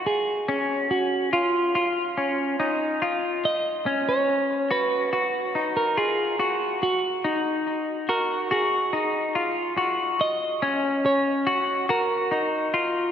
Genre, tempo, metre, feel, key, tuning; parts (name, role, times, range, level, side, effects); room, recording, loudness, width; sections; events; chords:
dream pop; 71 BPM; 4/4; straight; F# major; A4 = 440 Hz
semi-hollow electric guitar; melody; 0.0-13.1 s; E#4 to D#5; -26 LUFS; right 2 dB; tape echo
semi-hollow electric guitar; arpeggios; 0.0-13.1 s; C#4 to F#4; -24 LUFS; left 2 dB; lush chorus, tape echo
wet lush hall reverb, RT60 3.0 s; dreamy mix soaked in reverb; -22 LUFS; side -9 dB against mid
0.0-10.2 A section; 10.2-13.1 B section
0.1 C#add9; 3.4 F#sus2; 6.8 D#madd11; 10.2 F#6